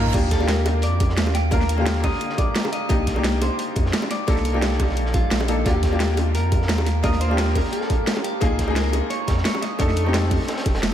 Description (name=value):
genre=liquid drum and bass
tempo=174 BPM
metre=4/4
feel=swing 54% on 16ths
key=Eb lydian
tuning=A4 = 440 Hz
part: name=bright grand piano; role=accompaniment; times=0.0-10.9 s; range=D3 to Bb4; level=-25 LUFS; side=left 1 dB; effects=vintage 12-bit sampler grit, ping-pong delay
part: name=warm sub bass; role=bass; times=0.0-10.9 s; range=F1 to F2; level=-22 LUFS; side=equal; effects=tube saturation
part: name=crunchy breakbeat drum kit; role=drums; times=0.1-10.9 s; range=hi-hat, snare drum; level=-34 LUFS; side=equal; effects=high-pass filter on hats, high-pass filter on snare, high-pass filter on room
part: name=drum and bass drum kit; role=drums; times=0.1-10.9 s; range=crash cymbal, hi-hat, snare drum, toms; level=-27 LUFS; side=equal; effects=overdrive
part: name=electronic kick drum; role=drums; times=0.1-10.7 s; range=none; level=-23 LUFS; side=equal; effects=none
part: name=bongos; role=percussion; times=0.1-10.7 s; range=none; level=-31 LUFS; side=right 1 dB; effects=none
part: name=clean electric guitar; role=melody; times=0.3-10.8 s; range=F4 to G5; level=-29 LUFS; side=equal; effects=analog delay
room=moderate cathedral reverb, RT60 5.3 s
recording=dreamy mix soaked in reverb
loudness=-19 LUFS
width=side -10 dB against mid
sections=0.0-10.9 A section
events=none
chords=0.1 Ebmaj9; 2.9 Cm9; 5.7 Ebmaj9; 8.4 Db69; 9.8 F13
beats=| 0.14 0.48 0.83 1.18 | 1.52 1.86 2.21 2.55 | 2.90 3.24 3.59 3.93 | 4.28 4.62 4.97 5.31 | 5.66 6.00 6.35 6.69 | 7.04 7.38 7.73 8.07 | 8.42 8.76 9.11 9.45 | 9.80 10.14 10.48 10.83